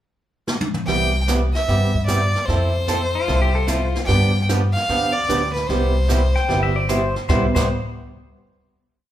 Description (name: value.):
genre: country, western swing.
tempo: 150 BPM.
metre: 4/4.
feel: swing 66% on 8ths.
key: C major.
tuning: A4 = 440 Hz.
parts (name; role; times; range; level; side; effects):
jazz brush drum kit; drums; 0.5-7.6 s; brushed snare drum, crash cymbal, hi-hat, kick drum, snare drum, toms; -26 LUFS; equal; none.
clear fiddle; melody; 0.9-6.9 s; B4 to G5; -23 LUFS; left 1 dB; none.
picked swing-style acoustic guitar; accompaniment; 0.9-7.7 s; C3 to A4; -24 LUFS; right 3 dB; none.
upright bass; bass; 0.9-7.7 s; G1 to G2; -20 LUFS; equal; none.
pedal steel guitar; second line; 3.2-7.7 s; F4 to G5; -25 LUFS; left 3 dB; none.
room: moderate large studio reverb, RT60 1.3 s.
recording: band playing live in one room.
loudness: -17 LUFS.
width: side -12 dB against mid.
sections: 0.0-0.9 pickup bar; 0.9-7.3 A section; 7.3-8.9 final chord.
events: drum fill 0.5-0.9.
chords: 0.0 N.C.; 0.9 Cmaj9; 2.5 Fmaj7; 4.1 G7; 5.7 Cmaj7.